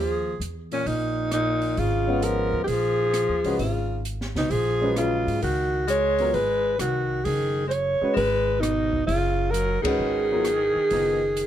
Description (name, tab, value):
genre	modal jazz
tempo	131 BPM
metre	4/4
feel	swing 67% on 8ths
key	Eb minor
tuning	A4 = 440 Hz
part	growling alto saxophone	melody	0.0-11.5 s	Db4 to Db5	-24 LUFS	right 2 dB	plate reverb
part	clear tenor saxophone	second line	0.0-11.5 s	Bb2 to Ab3	-30 LUFS	left 8 dB	none
part	upright bass	bass	0.0-11.5 s	Gb1 to Ab2	-29 LUFS	equal	none
part	open jazz drum kit	drums	0.4-11.5 s	hi-hat, kick drum, ride cymbal, rim click, snare drum	-36 LUFS	equal	none
part	warm upright piano	accompaniment	2.1-11.2 s	Gb3 to Gb5	-28 LUFS	left 1 dB	none
room	light reverb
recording	none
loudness	-21 LUFS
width	side -11 dB against mid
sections	0.0-11.5 A section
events	band accent 9.8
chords	0.0 Eb9sus4; 5.4 Db9sus4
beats	0.41 0.86 1.32 | 1.78 2.23 2.69 3.15 | 3.60 4.06 4.52 4.97 | 5.43 5.89 6.35 6.80 | 7.26 7.72 8.17 8.63 | 9.09 9.54 10.00 10.46 | 10.91 11.37